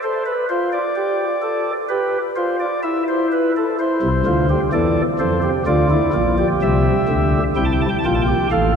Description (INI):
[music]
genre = classical, baroque-style 3-part fugue for pipe organ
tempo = 64 BPM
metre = 3/4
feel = straight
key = unclear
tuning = A4 = 440 Hz
[part]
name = pipe organ, flutes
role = solo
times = 0.0-8.8 s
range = A1 to A5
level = -16 LUFS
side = equal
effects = none
[sound]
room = wet cathedral reverb, RT60 5.6 s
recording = none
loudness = -16 LUFS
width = side -6 dB against mid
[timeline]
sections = 0.0-8.8 A section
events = none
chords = 0.0 F/A; 1.0 G7; 2.8 C/E; 3.8 F; 5.7 Bb/D; 6.6 C7